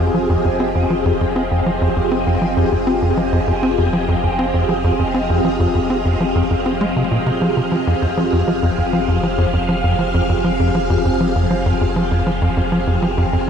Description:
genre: ambient, sequencer-driven space music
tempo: 99 BPM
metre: 4/4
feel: straight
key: F minor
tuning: A4 = 444 Hz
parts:
  - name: phased string machine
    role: sustained chords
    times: 0.0-13.5 s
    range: F3 to F5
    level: -19 LUFS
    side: equal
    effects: ensemble chorus, phaser
  - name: tight sequencer bass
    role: riff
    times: 0.0-13.4 s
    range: F2 to C4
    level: -18 LUFS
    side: equal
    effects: ping-pong delay
  - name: warm sub bass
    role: bass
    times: 0.0-13.5 s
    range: F1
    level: -28 LUFS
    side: equal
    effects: none
  - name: wind-like tuned noise texture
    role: texture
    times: 0.0-13.5 s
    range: F5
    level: -29 LUFS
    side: right 2 dB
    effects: built-in reverb
room: wet huge ambient reverb, RT60 7.2 s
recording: dreamy mix soaked in reverb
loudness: -15 LUFS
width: side -7 dB against mid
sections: 0.0-13.5 A section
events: none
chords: 0.0 Fm7

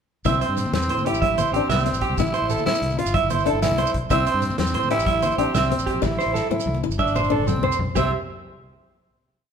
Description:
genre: highlife guitar band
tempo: 125 BPM (dotted quarters)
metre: 12/8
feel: straight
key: C major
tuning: A4 = 439 Hz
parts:
  - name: fingered electric bass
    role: bass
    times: 0.2-8.1 s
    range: G1 to A2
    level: -27 LUFS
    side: equal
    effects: none
  - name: shekere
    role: percussion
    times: 0.2-8.1 s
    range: none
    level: -33 LUFS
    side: right 4 dB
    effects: none
  - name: growling tenor saxophone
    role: melody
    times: 0.3-8.1 s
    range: C4 to F4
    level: -25 LUFS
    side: equal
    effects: none
  - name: fingerpicked swing-style acoustic guitar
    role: accompaniment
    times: 0.3-8.1 s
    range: C4 to E4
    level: -28 LUFS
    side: left 8 dB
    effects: none
  - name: electric guitar through a small old amp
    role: arpeggios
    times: 0.3-8.1 s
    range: G4 to E5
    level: -24 LUFS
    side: right 6 dB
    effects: spring reverb
  - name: vintage drum kit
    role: drums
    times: 0.3-8.0 s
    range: crash cymbal, hi-hat, kick drum, snare drum, toms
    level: -29 LUFS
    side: equal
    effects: none
  - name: congas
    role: percussion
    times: 0.3-8.1 s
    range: none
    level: -31 LUFS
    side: left 5 dB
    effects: none
room: moderate large studio reverb, RT60 1.4 s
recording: band playing live in one room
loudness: -19 LUFS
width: side -7 dB against mid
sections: 0.3-8.0 A section; 8.0-9.5 final chord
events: drum fill 6.0-8.0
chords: 0.3 C; 2.2 Am; 4.1 C; 6.0 Am; 8.0 C

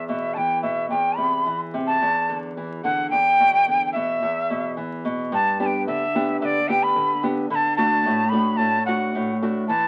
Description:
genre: andean folk, Andean ensemble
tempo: 110 BPM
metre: 2/4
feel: straight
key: unclear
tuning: A4 = 442 Hz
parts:
  - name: breathy bright quena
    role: melody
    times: 0.0-9.9 s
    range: D5 to B5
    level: -23 LUFS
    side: equal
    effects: none
  - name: nylon-string guitar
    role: accompaniment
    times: 0.0-9.9 s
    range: E2 to G4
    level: -27 LUFS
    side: equal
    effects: none
room: moderate studio reverb, RT60 0.6 s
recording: very old 78 rpm record, vinyl crackle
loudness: -22 LUFS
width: mono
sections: 0.0-5.3 A section; 5.3-9.9 B section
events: none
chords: 0.0 E5; 0.9 C/E; 2.0 E9sus4; 3.1 G/E; 4.2 E5; 5.3 G; 7.5 D

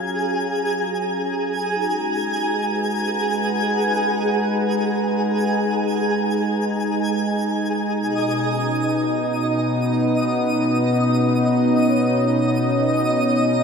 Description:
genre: ambient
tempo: free time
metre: none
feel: none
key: unclear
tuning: A4 = 440 Hz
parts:
  - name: warm analog pad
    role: sustained chords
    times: 0.0-13.6 s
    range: B2 to A#5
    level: -20 LUFS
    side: equal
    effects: chorus
  - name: vibraphone with soft mallets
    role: arpeggios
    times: 0.0-13.6 s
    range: C#4 to F#5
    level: -29 LUFS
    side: left 1 dB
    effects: diffuse ambient delay
  - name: twinkling granular texture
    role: texture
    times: 0.0-13.6 s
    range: G#4 to D#6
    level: -23 LUFS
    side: equal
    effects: built-in reverb
room: wet cathedral reverb, RT60 5.5 s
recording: none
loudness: -18 LUFS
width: side -6 dB against mid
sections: 0.0-13.6 A section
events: fade-in on analog synth pad 0.0-13.6; fade-in on vibraphone 0.0-13.6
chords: 0.0 F#maj9; 1.9 G#m9; 8.0 Bmaj9

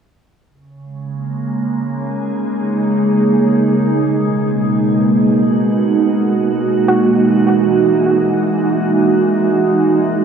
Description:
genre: ambient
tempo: free time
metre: none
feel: none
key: unclear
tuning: A4 = 440 Hz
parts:
  - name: glassy FM pad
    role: sustained chords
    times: 1.0-10.2 s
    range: B2 to G#4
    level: -13 LUFS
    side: right 2 dB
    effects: ensemble chorus, built-in reverb, shimmer reverb
  - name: soft round pluck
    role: arpeggios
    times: 6.9-8.9 s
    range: F#4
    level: -22 LUFS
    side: right 2 dB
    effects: chorus, diffuse ambient delay, shimmer reverb
room: wet huge ambient reverb, RT60 8.1 s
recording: small room ambience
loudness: -12 LUFS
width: side -7 dB against mid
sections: 0.5-10.2 A section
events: none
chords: 0.5 D#7sus4; 3.7 G#m9; 6.9 F#13

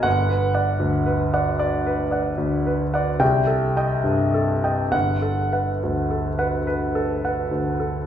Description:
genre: classical, impressionist solo piano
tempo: 34-40 BPM (dotted quarters)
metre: 9/8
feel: rubato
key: G major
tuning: A4 = 440 Hz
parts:
  - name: warm grand piano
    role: solo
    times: 0.0-8.1 s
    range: G1 to G5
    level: -19 LUFS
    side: equal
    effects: none
room: wet recital hall reverb, RT60 1.4 s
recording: heard from further back in the room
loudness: -19 LUFS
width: side -9 dB against mid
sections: 0.0-8.1 A section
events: none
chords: 0.1 Gmaj7; 3.2 Cm6; 4.9 Gmaj9

